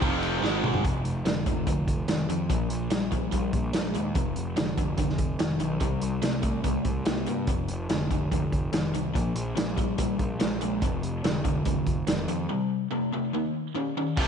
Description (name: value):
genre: classic rock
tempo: 144 BPM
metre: 4/4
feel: straight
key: unclear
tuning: A4 = 440 Hz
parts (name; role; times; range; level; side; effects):
- biting overdriven guitar; riff; 0.0-14.3 s; F2 to Db4; -31 LUFS; left 10 dB; slapback echo
- overdriven semi-hollow guitar; riff; 0.0-14.3 s; F2 to F4; -31 LUFS; right 9 dB; phaser
- fuzz picked electric bass; bass; 0.0-14.3 s; F1 to G2; -32 LUFS; equal; overdrive
- vintage drum kit; drums; 0.0-14.3 s; crash cymbal, hi-hat, kick drum, ride cymbal, snare drum, toms; -29 LUFS; equal; none
room: light reverb, small room ambience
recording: nothing above 10.8 kHz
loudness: -25 LUFS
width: side -7 dB against mid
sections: 0.8-14.2 A section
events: drum fill 0.4-0.8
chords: 0.0 F5; 0.4 Ab5; 0.8 F5; 2.5 Bb5; 4.2 F5; 5.8 C5; 7.5 F5; 9.2 Bb5; 10.8 F5; 12.5 C5; 13.3 Eb5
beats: 0.02 0.43 | 0.84 1.26 1.67 2.09 | 2.50 2.92 3.33 3.74 | 4.16 4.57 4.99 5.40 | 5.82 6.23 6.65 7.07 | 7.48 7.90 8.32 8.73 | 9.15 9.57 9.99 10.40 | 10.82 11.24 11.66 12.08 | 12.50 12.92 13.34 13.76 | 14.17